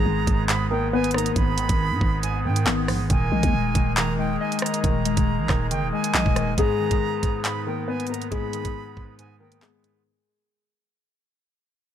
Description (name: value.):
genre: hip hop, drill.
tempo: 138 BPM.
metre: 4/4.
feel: half-time.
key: G# harmonic minor.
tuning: A4 = 441 Hz.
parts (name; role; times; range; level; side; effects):
dark grand piano; melody; 0.0-1.3, 6.6-10.0 s; G#3 to B4; -27 LUFS; left 5 dB; ping-pong delay.
silver concert flute; second line; 0.0-9.6 s; G5 to B5; -31 LUFS; right 8 dB; ping-pong delay.
warbly lo-fi synth keys; accompaniment; 0.0-10.1 s; G#2 to D#5; -27 LUFS; left 2 dB; chorus.
pipe organ, soft reed; sustained chords; 0.0-10.0 s; G#3 to B4; -33 LUFS; right 1 dB; none.
growling 808-style bass; bass; 0.0-6.6 s; D#1 to G#2; -26 LUFS; right 1 dB; none.
drill drum kit; drums; 0.3-9.9 s; handclaps, hi-hat, kick drum, rim click; -24 LUFS; right 1 dB; none.
room: small room ambience.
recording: none.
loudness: -20 LUFS.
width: side -10 dB against mid.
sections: 0.0-6.6 A section; 6.6-10.1 B section.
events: fade-out 6.6-10.1.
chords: 0.0 G#madd9; 3.1 D#sus4; 6.6 G#madd9.